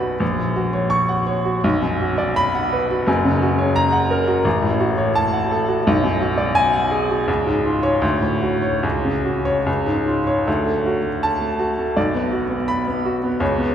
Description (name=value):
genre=classical, romantic character piece for solo piano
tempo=70-88 BPM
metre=2/4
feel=rubato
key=unclear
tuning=A4 = 440 Hz
part: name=clear upright piano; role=solo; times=0.0-13.7 s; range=F#1 to C#6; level=-17 LUFS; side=equal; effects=none
room=wet church reverb, RT60 3.5 s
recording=recorded in a church or concert hall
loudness=-17 LUFS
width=side -9 dB against mid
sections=0.0-10.5 A section; 10.5-13.7 B section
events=none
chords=0.2 F#/A#; 1.6 Bm; 3.1 F#; 4.5 F#m/A; 5.9 G#m7b5/B; 7.3 C#; 8.0 Dmaj7; 8.8 F#5/C#; 9.7 C#; 10.5 D; 12.0 Bm